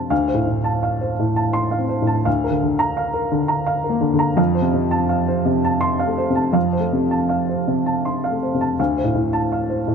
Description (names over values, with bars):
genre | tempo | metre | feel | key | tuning
neoclassical minimalist piano | 83 BPM | 3/4 | rubato | D minor | A4 = 441 Hz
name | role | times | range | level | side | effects
dark upright piano | solo | 0.0-9.9 s | D2 to C6 | -17 LUFS | equal | none
room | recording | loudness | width
light reverb | close, detailed microphones | -17 LUFS | side -6 dB against mid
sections
0.1-9.9 A section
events
none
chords
0.1 Dm7; 2.3 Bb/D; 4.4 F; 8.8 Dm7